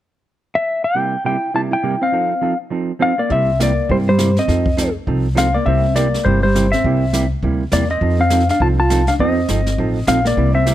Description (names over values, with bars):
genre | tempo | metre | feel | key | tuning
country, western swing | 204 BPM | 4/4 | swing 60% on 8ths | C mixolydian | A4 = 442 Hz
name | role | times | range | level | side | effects
clean lap steel guitar | melody | 0.6-10.7 s | C5 to A5 | -18 LUFS | left 2 dB | none
hollow-body jazz guitar | accompaniment | 0.9-10.7 s | C3 to A4 | -22 LUFS | right 5 dB | none
hollow-body jazz guitar | second line | 1.3-10.7 s | G3 to F4 | -21 LUFS | right 1 dB | none
upright bass | bass | 3.3-10.7 s | G1 to G2 | -18 LUFS | equal | none
jazz brush drum kit | drums | 3.3-10.7 s | brushed snare drum, hi-hat, kick drum, snare drum | -25 LUFS | left 1 dB | none
room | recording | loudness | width
light reverb | none | -14 LUFS | side -13 dB against mid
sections
1.0-3.3 A section; 3.3-10.7 B section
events
none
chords
0.0 N.C.; 1.0 C7; 2.1 F7; 3.3 C7; 4.5 F7; 5.7 C7; 8.0 F7